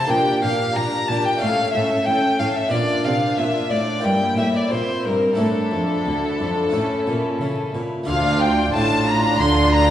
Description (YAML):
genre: classical, baroque-style concerto movement with solo episodes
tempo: 91 BPM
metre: 4/4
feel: straight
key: D minor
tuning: A4 = 441 Hz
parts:
  - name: rich chamber violin section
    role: melody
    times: 0.0-9.9 s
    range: E4 to C6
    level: -27 LUFS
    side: left 2 dB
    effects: none
  - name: rich violin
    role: melody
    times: 0.0-9.9 s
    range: A4 to C6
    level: -23 LUFS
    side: left 1 dB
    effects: none
  - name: rich chamber violin section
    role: second line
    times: 0.0-9.9 s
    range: F4 to Bb5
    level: -26 LUFS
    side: left 3 dB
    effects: none
  - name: harpsichord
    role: accompaniment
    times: 0.0-9.9 s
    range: D2 to A4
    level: -26 LUFS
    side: equal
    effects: none
  - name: warm symphonic viola section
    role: accompaniment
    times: 0.0-9.9 s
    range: Bb3 to D4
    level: -25 LUFS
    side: right 1 dB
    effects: none
  - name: warm chamber cello section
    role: bass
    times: 0.1-9.9 s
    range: D2 to D3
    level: -25 LUFS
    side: right 1 dB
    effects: none
  - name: rich chamber double bass section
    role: bass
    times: 8.1-9.9 s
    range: A1 to D2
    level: -23 LUFS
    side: equal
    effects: none
room: wet recital hall reverb, RT60 1.7 s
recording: recorded in a church or concert hall, vinyl crackle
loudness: -17 LUFS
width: side -11 dB against mid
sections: 0.0-8.1 A section; 8.1-9.9 B section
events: none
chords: 0.1 Gm/Bb; 1.4 A; 2.7 Bb; 4.0 Edim/G; 5.4 Asus4; 6.7 A; 8.1 Dm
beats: | 0.10 0.75 1.41 2.07 | 2.72 3.38 4.04 4.71 | 5.38 6.06 6.73 7.41 | 8.08 8.74 9.40